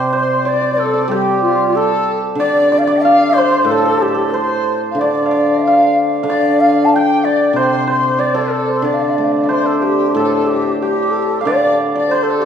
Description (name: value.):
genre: chinese traditional, Chinese chamber ensemble.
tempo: 93 BPM.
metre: 2/4.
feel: rubato.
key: D yu mode.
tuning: A4 = 438 Hz.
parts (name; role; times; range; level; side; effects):
mellow xiao; melody; 0.0-12.4 s; F4 to A5; -17 LUFS; equal; none.
hammered dulcimer; second line; 0.0-12.4 s; G4 to G5; -19 LUFS; right 3 dB; none.
large dizi; second line; 0.0-12.4 s; F4 to G5; -19 LUFS; left 3 dB; none.
hammered dulcimer; accompaniment; 0.0-12.4 s; A2 to D4; -18 LUFS; equal; none.
room: wet recital hall reverb, RT60 1.8 s.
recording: recorded in a church or concert hall.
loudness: -12 LUFS.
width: side -8 dB against mid.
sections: 0.0-10.2 A section; 10.2-12.4 B section.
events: none.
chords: none.